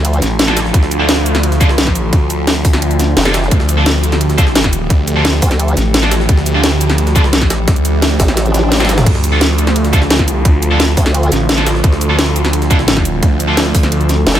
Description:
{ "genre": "dark technical drum and bass", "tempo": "173 BPM", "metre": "4/4", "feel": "straight", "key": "D minor", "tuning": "A4 = 439 Hz", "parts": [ { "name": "metallic inharmonic drone", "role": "sustained chords", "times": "0.0-14.4 s", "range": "D3 to G4", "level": "-19 LUFS", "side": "equal", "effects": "chorus, built-in reverb, sidechain pumping" }, { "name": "formant-sweep wobble bass", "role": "bass", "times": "0.0-0.2, 3.2-5.8, 8.2-11.3, 14.3-14.4 s", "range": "F1 to D2", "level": "-14 LUFS", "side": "equal", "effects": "chorus" }, { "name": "drum and bass drum kit", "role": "drums", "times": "0.0-14.4 s", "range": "crash cymbal, hi-hat, shaker, snare drum, toms", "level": "-16 LUFS", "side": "equal", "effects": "overdrive" }, { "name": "jungle sampler-style drum kit", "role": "drums", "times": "0.0-14.4 s", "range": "hi-hat, ride cymbal, snare drum", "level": "-23 LUFS", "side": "equal", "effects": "high-pass filter on cymbals, high-pass filter on snare, high-pass filter on hats" }, { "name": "phased detuned saw bass", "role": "bass", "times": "0.2-14.3 s", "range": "A1 to D2", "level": "-15 LUFS", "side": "equal", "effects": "phaser, tube saturation" }, { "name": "thick fuzz guitar", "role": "stabs", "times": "0.5-14.4 s", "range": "D4 to A4", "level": "-20 LUFS", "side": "right 1 dB", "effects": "distortion, dub echo" }, { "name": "electronic kick drum", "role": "drums", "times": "0.7-13.8 s", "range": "none", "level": "-12 LUFS", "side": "equal", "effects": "overdrive" }, { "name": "swell", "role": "sound effects", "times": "8.5-9.1 s", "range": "none", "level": "-23 LUFS", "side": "left 4 dB", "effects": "none" } ], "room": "little or no reverb", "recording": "none", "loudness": "-10 LUFS", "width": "side -11 dB against mid", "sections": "0.0-14.4 A section", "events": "drum fill 8.7-9.1", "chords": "0.0 Dm" }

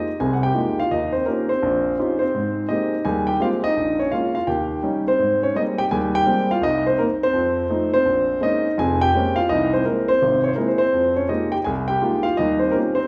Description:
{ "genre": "solo jazz", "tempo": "168 BPM", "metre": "4/4", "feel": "swing 64% on 8ths", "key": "Ab major", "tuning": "A4 = 439 Hz", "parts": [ { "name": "warm grand piano", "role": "solo", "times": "0.0-13.1 s", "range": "F1 to Ab5", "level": "-20 LUFS", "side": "equal", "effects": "none" } ], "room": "wet recital hall reverb, RT60 1.3 s", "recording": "recorded in a church or concert hall", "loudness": "-20 LUFS", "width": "mono", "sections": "0.0-5.2 A section; 5.2-13.1 A section", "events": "none", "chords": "0.0 Fm11; 0.9 Eb13; 2.3 Abmaj9; 3.8 Bbm7; 4.5 Eb7; 5.2 Abmaj9; 6.6 Cm7; 7.3 F7; 8.1 Bbm9; 9.5 C7alt; 10.9 Fm11; 12.4 Eb13" }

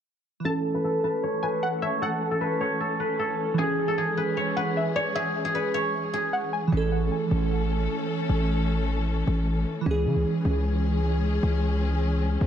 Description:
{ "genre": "hip hop", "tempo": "153 BPM", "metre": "4/4", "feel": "half-time", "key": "A major", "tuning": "A4 = 440 Hz", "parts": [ { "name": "guzheng", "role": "melody", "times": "0.4-8.4 s", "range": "G#4 to C#5", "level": "-27 LUFS", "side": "equal", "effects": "low-pass filter, analog delay" }, { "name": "glassy digital keys", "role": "accompaniment", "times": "0.4-12.5 s", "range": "E3 to A4", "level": "-29 LUFS", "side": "right 3 dB", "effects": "chorus, low-pass filter, analog delay" }, { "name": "warbly dusty pluck", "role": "second line", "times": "0.5-6.7 s", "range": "D5 to A5", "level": "-33 LUFS", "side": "left 2 dB", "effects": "chorus, analog delay" }, { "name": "warm studio string section", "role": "sustained chords", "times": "0.5-12.5 s", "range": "E3 to A4", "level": "-32 LUFS", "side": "left 3 dB", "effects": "low-pass filter" }, { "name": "distorted 808-style bass", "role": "bass", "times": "6.7-12.5 s", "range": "A1 to C#3", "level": "-25 LUFS", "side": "equal", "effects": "distortion" } ], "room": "light reverb, studio reverb", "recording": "echo-heavy mix", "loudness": "-23 LUFS", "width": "side -9 dB against mid", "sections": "0.5-6.7 A section; 6.7-12.5 B section", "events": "filter sweep 0.5-6.7", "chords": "0.5 A; 3.6 C#m; 6.7 A; 9.9 C#m" }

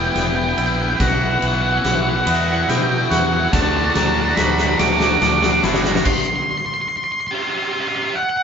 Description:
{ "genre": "post-rock", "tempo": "48 BPM (dotted quarters)", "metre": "6/8", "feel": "straight", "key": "unclear", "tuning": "A4 = 444 Hz", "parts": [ { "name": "octave-fuzz lead guitar", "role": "melody", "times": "0.0-8.4 s", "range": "E5 to D6", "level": "-20 LUFS", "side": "equal", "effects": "distortion" }, { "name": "warm analog pad", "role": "sustained chords", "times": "0.0-6.0 s", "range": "E4 to G5", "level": "-31 LUFS", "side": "right 2 dB", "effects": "chorus, tremolo" }, { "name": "twangy electric guitar", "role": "arpeggios", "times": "0.0-6.1 s", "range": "E2 to F#4", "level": "-27 LUFS", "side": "left 1 dB", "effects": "none" }, { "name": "crunchy overdriven guitar", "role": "riff", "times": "0.0-6.1 s", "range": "B3 to F#4", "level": "-24 LUFS", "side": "left 3 dB", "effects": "phaser" }, { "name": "fuzz fingered electric bass", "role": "bass", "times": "0.0-6.0 s", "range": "E1 to B2", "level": "-23 LUFS", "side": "right 1 dB", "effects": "overdrive" }, { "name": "huge arena drum kit", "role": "drums", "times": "0.2-6.3 s", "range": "crash cymbal, kick drum, ride cymbal, snare drum", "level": "-21 LUFS", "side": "left 1 dB", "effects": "none" }, { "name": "fuzz guitar", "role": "riff", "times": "3.5-6.1 s", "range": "D4 to F#4", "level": "-24 LUFS", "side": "right 6 dB", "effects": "distortion" } ], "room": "moderate studio reverb, RT60 0.8 s", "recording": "band playing live in one room, nothing above 7.6 kHz", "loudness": "-16 LUFS", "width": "side -7 dB against mid", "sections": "0.0-8.4 A section", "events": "build-up 0.0-8.4; drum fill 0.0-6.1; stop 6.1-8.4", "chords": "0.0 Em; 1.0 Bsus4; 3.5 Dadd9; 6.1 N.C." }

